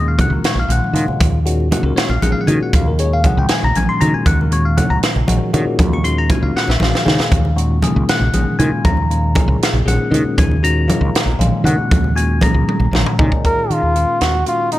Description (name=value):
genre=electric jazz fusion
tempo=78 BPM (dotted quarters)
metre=6/8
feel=straight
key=Eb minor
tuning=A4 = 437 Hz
part: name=bell-like tine electric piano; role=accompaniment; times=0.0-14.8 s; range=Bb2 to Db6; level=-19 LUFS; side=left 2 dB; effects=phaser
part: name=mellow fretless electric bass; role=bass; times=0.0-14.4 s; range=Bb1 to Eb3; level=-17 LUFS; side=equal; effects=none
part: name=congas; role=percussion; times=0.1-13.3 s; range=none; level=-21 LUFS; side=right 1 dB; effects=none
part: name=crisp fusion drum kit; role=drums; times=0.2-14.8 s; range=hi-hat, kick drum, snare drum, toms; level=-19 LUFS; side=right 1 dB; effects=none
part: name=trumpet with bucket mute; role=melody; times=13.5-14.8 s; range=Eb4 to Bb4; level=-16 LUFS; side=equal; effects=none
room=light reverb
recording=none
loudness=-13 LUFS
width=side -15 dB against mid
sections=0.0-13.4 A section; 13.4-14.8 B section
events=drum fill 0.6-1.2, 6.6-7.3, 12.7-13.4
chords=0.0 Ebm9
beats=0.44 | 1.20 1.97 | 2.73 3.50 | 4.26 5.02 | 5.79 6.55 | 7.32 8.08 | 8.85 9.61 | 10.38 11.14 | 11.91 12.67 | 13.44 14.21